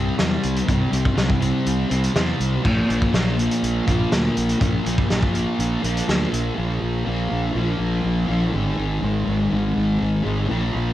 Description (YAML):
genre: rock, shoegaze and dream pop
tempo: 122 BPM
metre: 4/4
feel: straight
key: unclear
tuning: A4 = 440 Hz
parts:
  - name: thick fuzz guitar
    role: riff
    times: 0.0-10.9 s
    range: Ab2 to C4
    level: -22 LUFS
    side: left 1 dB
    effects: distortion, lush chorus
  - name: fuzz fingered electric bass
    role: bass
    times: 0.0-10.9 s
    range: Ab1 to E2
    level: -24 LUFS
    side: equal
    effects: overdrive
  - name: loose indie drum kit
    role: drums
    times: 0.2-6.4 s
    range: crash cymbal, hi-hat, kick drum, snare drum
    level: -23 LUFS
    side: equal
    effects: cassette tape
room: little or no reverb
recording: home recording on cassette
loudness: -19 LUFS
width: side -13 dB against mid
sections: 0.0-6.6 A section; 6.6-10.9 B section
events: none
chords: 0.0 C; 2.6 Bb5; 8.5 Ab5